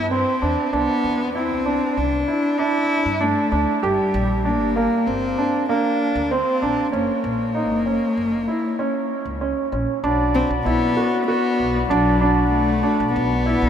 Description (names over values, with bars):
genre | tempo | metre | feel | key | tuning
contemporary instrumental, chamber music in an uneven meter | 97 BPM | 5/4 | straight | B minor from 10.0 s | A4 = 436 Hz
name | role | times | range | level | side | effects
dark cello | melody | 0.0-13.7 s | F#3 to E4 | -22 LUFS | left 2 dB | none
upright bass | bass | 0.0-13.7 s | F#1 to G2 | -26 LUFS | equal | none
warm grand piano | arpeggios | 0.1-13.7 s | Bb3 to G4 | -21 LUFS | right 3 dB | none
pedal harmonium | sustained chords | 10.0-13.7 s | F#4 to B5 | -25 LUFS | left 4 dB | stereo widening
room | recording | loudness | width
wet huge ambient reverb, RT60 9.1 s | in a vast, echoing space | -18 LUFS | side -8 dB against mid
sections
0.0-10.0 A section; 10.0-13.7 B section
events
none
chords
0.0 Cadd9; 3.8 Gm; 6.9 F#; 10.0 Bm